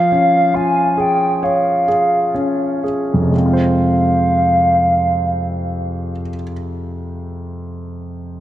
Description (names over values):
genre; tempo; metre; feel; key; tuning
pop ballad; 59-71 BPM; 4/4; straight; F minor; A4 = 440 Hz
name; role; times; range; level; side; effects
hollow clarinet-like synth lead; melody; 0.0-6.3 s; F5 to Ab5; -16 LUFS; equal; chorus
warm concert grand piano; accompaniment; 0.0-8.4 s; F2 to Db5; -18 LUFS; equal; none
room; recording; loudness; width
moderate lush hall reverb, RT60 2.5 s; dark, warm production; -14 LUFS; side -13 dB against mid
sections
0.0-3.3 A section; 3.3-7.4 B section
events
slowing down 0.0-3.3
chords
0.0 Db/F; 3.3 Fm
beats
0.54 1.42 2.35 | 3.33 4.35 5.37 6.39